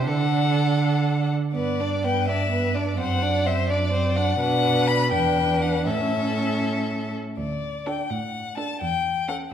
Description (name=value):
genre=quick classical-period movement for string quartet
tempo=78-86 BPM (dotted quarters)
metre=6/8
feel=rubato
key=D major from 4.4 s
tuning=A4 = 438 Hz
part: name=rich violin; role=second line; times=0.0-9.5 s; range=A4 to D5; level=-29 LUFS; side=equal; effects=none
part: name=dark viola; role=accompaniment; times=0.0-9.5 s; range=B3 to D4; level=-28 LUFS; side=right 4 dB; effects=none
part: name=rich cello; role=bass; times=0.0-9.5 s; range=D2 to D3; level=-25 LUFS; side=right 2 dB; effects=none
part: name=rich violin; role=melody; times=0.1-9.4 s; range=D5 to B5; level=-26 LUFS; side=left 6 dB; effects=none
room=wet recital hall reverb, RT60 1.5 s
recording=recorded in a church or concert hall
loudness=-21 LUFS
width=side -9 dB against mid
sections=0.0-7.4 A section; 7.4-9.5 B section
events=none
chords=0.1 D; 1.6 G; 3.0 D7/F#; 4.4 Bm; 5.1 Em7; 5.9 A; 7.4 D; 8.8 A7/E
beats=| 0.06 0.80 | 1.55 2.28 | 2.99 3.69 | 4.39 5.12 | 5.87 6.63 | 7.38 8.10 | 8.82 9.52